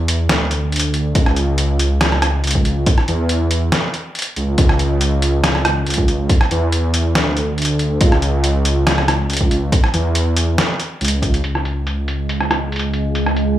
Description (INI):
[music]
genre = deep dubstep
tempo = 140 BPM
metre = 4/4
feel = half-time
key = C# phrygian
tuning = A4 = 442 Hz
[part]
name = dark detuned saw bass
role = bass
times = 0.0-13.6 s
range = C#2 to E2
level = -17 LUFS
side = equal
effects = none
[part]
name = trip hop sampler-style drum kit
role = drums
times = 0.1-13.5 s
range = hi-hat, rim click, snare drum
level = -19 LUFS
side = equal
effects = overdrive, low-pass filter on hats, low-pass filter on cymbals, low-pass filter on snare
[part]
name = electronic kick drum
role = drums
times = 1.2-11.3 s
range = none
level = -15 LUFS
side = equal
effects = overdrive
[part]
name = bowed-like drone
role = sustained chords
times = 11.9-13.6 s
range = C#3 to G#3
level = -21 LUFS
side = right 2 dB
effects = built-in reverb
[sound]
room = light reverb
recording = studio reverb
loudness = -15 LUFS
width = side -12 dB against mid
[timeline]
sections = 0.0-11.4 A section; 11.4-13.6 B section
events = filter sweep on synth drone 11.4-13.6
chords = 0.0 C#m; 11.4 C#5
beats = 0.30 0.72 | 1.15 1.58 2.01 2.44 | 2.87 3.30 3.72 4.15 | 4.58 5.01 5.44 5.87 | 6.30 6.72 7.15 7.58 | 8.01 8.44 8.87 9.30 | 9.72 10.15 10.58 11.01 | 11.44 11.87 12.30 12.72 | 13.15 13.58